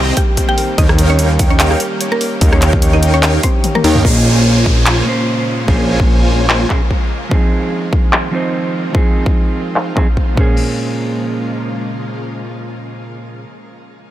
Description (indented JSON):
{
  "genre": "future bass",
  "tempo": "147 BPM",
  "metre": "4/4",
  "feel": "swing 55% on 16ths, half-time",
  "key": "Bb dorian",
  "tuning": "A4 = 440 Hz",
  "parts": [
    { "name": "mallet-like synth pluck", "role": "melody", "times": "0.0-4.0 s", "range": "Bb3 to G5", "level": "-21 LUFS", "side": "equal", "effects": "chorus, sidechain pumping, digital delay" },
    { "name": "shimmering ambient pad", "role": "sustained chords", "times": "0.0-13.5 s", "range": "Db3 to G4", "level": "-26 LUFS", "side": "left 2 dB", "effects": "chorus, built-in reverb, sidechain pumping" },
    { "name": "concert harp", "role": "arpeggios", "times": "0.0-5.6 s", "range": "G4 to Bb5", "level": "-26 LUFS", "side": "right 2 dB", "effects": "sidechain pumping, digital delay" },
    { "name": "supersaw chords", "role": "riff", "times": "0.0-6.7 s", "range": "Bb3 to Bb5", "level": "-21 LUFS", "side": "equal", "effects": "phaser, cassette tape, sidechain pumping, digital delay" },
    { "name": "fat analog bass", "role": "bass", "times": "0.0-6.7 s", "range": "Bb1 to Eb2", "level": "-14 LUFS", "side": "equal", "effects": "sidechain pumping" },
    { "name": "big-room dance drum kit", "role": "drums", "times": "0.2-10.5 s", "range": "crash cymbal, finger snaps, handclaps, hi-hat, rim click, toms", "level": "-20 LUFS", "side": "equal", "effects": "low-pass filter on hats, low-pass filter on snare, low-pass filter on toms, low-pass filter on cymbals" },
    { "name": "electronic kick drum", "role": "drums", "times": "0.2-10.5 s", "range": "none", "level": "-14 LUFS", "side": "equal", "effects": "none" },
    { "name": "mellow electric guitar", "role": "accompaniment", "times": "4.0-13.5 s", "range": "Bb2 to C5", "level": "-19 LUFS", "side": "right 2 dB", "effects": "sidechain pumping, digital delay" },
    { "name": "downlifter", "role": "sound effects", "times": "4.0-7.3 s", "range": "none", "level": "-24 LUFS", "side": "equal", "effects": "none" }
  ],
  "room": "light reverb",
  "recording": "none",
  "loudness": "-11 LUFS",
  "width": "side -13 dB against mid",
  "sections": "0.0-4.0 A section; 4.0-10.6 B section; 10.6-13.8 C section",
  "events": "drop 0.0-4.0; kick drops out 3.6-4.0; drum fill 3.6-4.0; filter sweep on drum 4.0-10.6",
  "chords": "0.0 Cm7; 0.6 Eb7; 4.0 Bbm7; 7.1 Fm7; 10.4 Bbm7",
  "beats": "0.37 | 0.78 1.19 1.60 2.01 | 2.42 2.82 3.23 3.64 | 4.05 4.46 4.86 5.27 | 5.68 6.09 6.50 6.91 | 7.31 7.72 8.13 8.54 | 8.95 9.35 9.76 10.17 | 10.58 10.99 11.39 11.80 | 12.21 12.62 13.03 13.44"
}